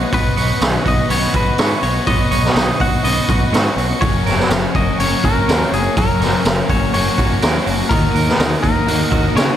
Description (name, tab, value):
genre	rock, shoegaze and dream pop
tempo	123 BPM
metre	4/4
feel	straight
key	F# major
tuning	A4 = 440 Hz
part	brassy analog pad	sustained chords	0.0-9.6 s	A#4 to D#6	-26 LUFS	right 2 dB	chorus
part	biting overdriven guitar	riff	0.0-9.6 s	D#3 to C#5	-23 LUFS	right 12 dB	reverse reverb
part	thick fuzz guitar	riff	0.0-9.6 s	B2 to F#4	-23 LUFS	left 10 dB	distortion, analog chorus
part	growling picked electric bass	bass	0.0-9.5 s	F#1 to C#3	-21 LUFS	equal	overdrive
part	twangy electric guitar	melody	0.1-9.6 s	G#4 to F#5	-22 LUFS	left 4 dB	tape echo
part	raw garage drum kit	drums	0.1-9.5 s	hi-hat, kick drum, snare drum	-17 LUFS	equal	none
part	overdriven electric guitar	riff	4.0-9.6 s	F#2 to D#4	-24 LUFS	equal	none
room	small room ambience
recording	none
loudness	-13 LUFS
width	side -10 dB against mid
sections	0.0-9.6 A section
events	none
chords	0.0 Badd9; 4.0 F#; 7.9 D#m